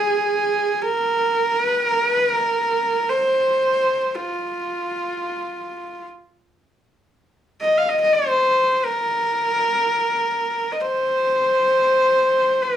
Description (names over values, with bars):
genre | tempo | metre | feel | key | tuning
mongolian traditional, Mongolian folk | free time | none | none | unclear | A4 = 439 Hz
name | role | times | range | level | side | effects
bright horsehead fiddle | solo | 0.0-12.8 s | F4 to F5 | -18 LUFS | equal | none
room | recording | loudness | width
wet studio reverb, RT60 0.5 s | rough home demo mix, small room ambience | -18 LUFS | side -10 dB against mid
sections
0.0-7.2 A section; 7.2-12.8 A section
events
none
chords
none